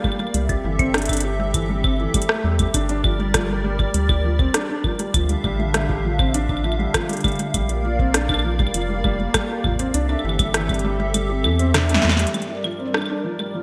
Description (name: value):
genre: IDM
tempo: 100 BPM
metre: 4/4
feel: straight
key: G dorian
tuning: A4 = 442 Hz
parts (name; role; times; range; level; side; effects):
- hollow soft pad; sustained chords; 0.0-13.6 s; G2 to F5; -30 LUFS; equal; ensemble chorus
- felt-muted upright piano; arpeggios; 0.0-13.6 s; E3 to G4; -28 LUFS; equal; vintage 12-bit sampler grit, low-pass filter, delay
- electro analog drum machine; drums; 0.0-13.5 s; claves, hi-hat, rim click, snare drum; -26 LUFS; equal; gated reverb, delay
- electronic kick drum; drums; 0.0-10.8 s; none; -26 LUFS; equal; none
- round analog bass; bass; 0.3-12.3 s; F1 to E2; -25 LUFS; equal; none
room: moderate lush hall reverb, RT60 1.8 s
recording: bright 1980s-style digital production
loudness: -21 LUFS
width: mono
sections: 0.0-12.3 A section; 12.3-13.6 B section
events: kick drops out 11.1-12.3; drum fill 11.7-12.3; filter sweep on felt piano 12.3-13.6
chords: 0.3 C6; 2.7 Gm; 5.1 Dmadd9; 7.5 Bb; 9.9 C6; 12.3 Gm